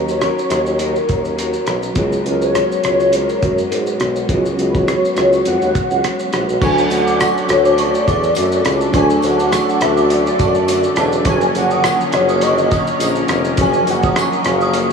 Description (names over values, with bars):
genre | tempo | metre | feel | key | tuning
indie pop, bedroom pop | 103 BPM | 4/4 | swing 55% on 16ths | unclear | A4 = 440 Hz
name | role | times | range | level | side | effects
warm velvety synth lead | melody | 0.0-14.9 s | A#4 to G#5 | -19 LUFS | equal | ensemble chorus, tape echo
electric guitar through a small old amp | accompaniment | 0.0-14.9 s | F#2 to A#4 | -23 LUFS | left 4 dB | wide subtle chorus, vibrato effect
mellow reed electric piano | accompaniment | 0.0-14.9 s | E#3 to A#4 | -25 LUFS | right 4 dB | fast tremolo, cassette tape
warm tuba | bass | 0.0-14.9 s | E1 to G#2 | -18 LUFS | equal | none
cloth-damped thuddy drum kit | drums | 0.1-14.9 s | crash cymbal, hi-hat, kick drum, rim click, shaker | -22 LUFS | equal | none
synth chime | second line | 6.6-14.7 s | A5 to D#6 | -23 LUFS | right 3 dB | ensemble chorus, tape echo
phased analog pad | sustained chords | 6.6-14.9 s | D3 to D5 | -23 LUFS | left 1 dB | phaser, chorus
tambourine | percussion | 6.6-14.9 s | none | -36 LUFS | left 8 dB | none
room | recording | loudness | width
wet huge ambient reverb, RT60 8.1 s | dreamy mix soaked in reverb, small room ambience | -13 LUFS | side -6 dB against mid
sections
0.0-6.6 A section; 6.6-14.9 B section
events
none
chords
0.0 D#m7; 2.0 C#7sus4; 6.6 Dmaj7; 11.3 F#maj7